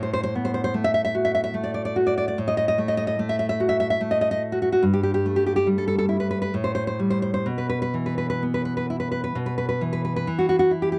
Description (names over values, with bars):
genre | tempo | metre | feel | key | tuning
romantic piece for solo classical guitar | 62-75 BPM | 3/4 | rubato | E minor | A4 = 441 Hz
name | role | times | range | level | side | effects
nylon-string guitar | solo | 0.0-11.0 s | G2 to E5 | -24 LUFS | equal | none
room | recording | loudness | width
light reverb | dry, close 1970s-style studio recording | -24 LUFS | mono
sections
0.0-10.3 A section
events
none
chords
0.0 Am69; 2.4 D#dim/A; 4.8 Em/G (rootless); 6.5 Am7; 7.5 Bsus4; 10.3 Em